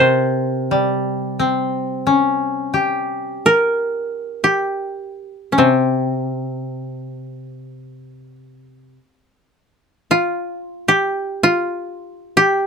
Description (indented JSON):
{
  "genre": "japanese traditional, Japanese chamber music",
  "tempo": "free time",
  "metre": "none",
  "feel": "none",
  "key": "C in sen",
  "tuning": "A4 = 440 Hz",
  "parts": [
    { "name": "koto", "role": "melody", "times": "0.0-12.7 s", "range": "C4 to C5", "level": "-16 LUFS", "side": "equal", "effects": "none" },
    { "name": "koto", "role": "accompaniment", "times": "0.0-9.0 s", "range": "C3 to G4", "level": "-19 LUFS", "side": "left 2 dB", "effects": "none" }
  ],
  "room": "little or no reverb",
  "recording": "close, detailed microphones",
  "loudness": "-17 LUFS",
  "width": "side -6 dB against mid",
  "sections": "0.0-9.3 A section; 9.3-12.7 A section",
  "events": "none",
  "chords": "none",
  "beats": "free time"
}